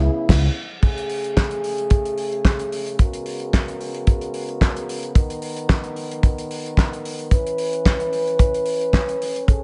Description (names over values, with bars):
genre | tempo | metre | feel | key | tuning
disco | 111 BPM | 4/4 | straight | unclear | A4 = 437 Hz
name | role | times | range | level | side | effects
dark French horn section | sustained chords | 0.0-9.6 s | C#3 to B4 | -27 LUFS | equal | none
picked electric bass | bass | 0.0-0.5 s | C#2 | -20 LUFS | equal | none
damped 70s drum kit | drums | 0.3-9.6 s | crash cymbal, handclaps, hi-hat, kick drum, snare drum | -22 LUFS | equal | none
room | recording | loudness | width
small room ambience | nothing above 10.8 kHz | -21 LUFS | mono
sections
0.8-9.6 A section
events
band accent 0.0-0.8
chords
0.0 C#m7; 0.8 Amaj7; 3.0 G#m11; 5.2 Bmaj7; 7.3 C#m7